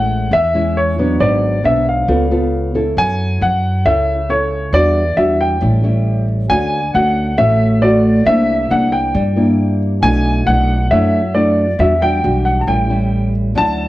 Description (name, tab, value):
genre	bossa nova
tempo	136 BPM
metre	4/4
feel	straight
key	A major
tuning	A4 = 442 Hz
part	warm baby grand piano	melody	0.0-13.9 s	C#5 to A5	-16 LUFS	left 1 dB	plate reverb
part	nylon-string guitar	accompaniment	0.0-13.9 s	G#2 to A4	-17 LUFS	equal	none
part	upright bass	bass	0.0-13.9 s	G#1 to G2	-18 LUFS	equal	none
part	concert flute	second line	6.5-13.9 s	D5 to A5	-25 LUFS	right 2 dB	none
room	moderate studio ambience, RT60 0.5 s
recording	worn, warbling old tape, cassette tape, warbly pitch drift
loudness	-12 LUFS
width	side -16 dB against mid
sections	0.0-13.9 A section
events	none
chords	0.0 Amaj7; 1.2 G#m7b5; 2.1 C#7b13; 3.0 F#m7; 4.7 Em9; 5.6 A7; 6.5 Dmaj7; 8.3 C9; 10.0 Bm7; 11.8 Em9; 12.7 A7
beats	0.32 0.76 | 1.20 1.64 2.08 2.53 | 2.97 3.41 3.85 4.29 | 4.73 5.17 5.62 6.06 | 6.50 6.94 7.38 7.82 | 8.26 8.70 9.14 9.59 | 10.03 10.47 10.91 11.35 | 11.79 12.23 12.67 13.12 | 13.56